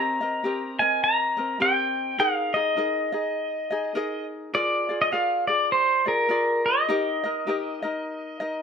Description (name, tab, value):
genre	Hawaiian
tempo	103 BPM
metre	4/4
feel	swing 60% on 8ths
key	Eb major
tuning	A4 = 443 Hz
part	pedal steel guitar	melody	0.0-8.6 s	Bb4 to Bb5	-23 LUFS	equal	none
part	ukulele	accompaniment	0.0-8.6 s	C4 to Eb5	-29 LUFS	left 2 dB	plate reverb
room	moderate studio reverb, RT60 0.5 s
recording	none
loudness	-22 LUFS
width	side -6 dB against mid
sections	0.0-8.6 A section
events	none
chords	0.0 Cm7; 2.2 Absus2; 4.5 Bb7; 6.9 Eb